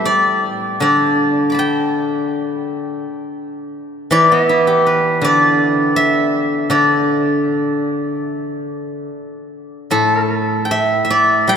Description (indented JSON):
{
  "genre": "chinese traditional, Chinese solo plucked strings",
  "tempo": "71-84 BPM",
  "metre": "4/4",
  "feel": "rubato",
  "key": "D zhi mode",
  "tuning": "A4 = 436 Hz",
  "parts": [
    { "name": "steel-string zither", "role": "solo", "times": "0.0-11.6 s", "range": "A2 to D6", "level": "-14 LUFS", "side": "equal", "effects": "none" }
  ],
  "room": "wet cathedral reverb, RT60 5.1 s",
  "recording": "in a vast, echoing space",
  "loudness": "-13 LUFS",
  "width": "side -7 dB against mid",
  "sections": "0.0-9.9 A section; 9.9-11.6 B section",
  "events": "none",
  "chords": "none"
}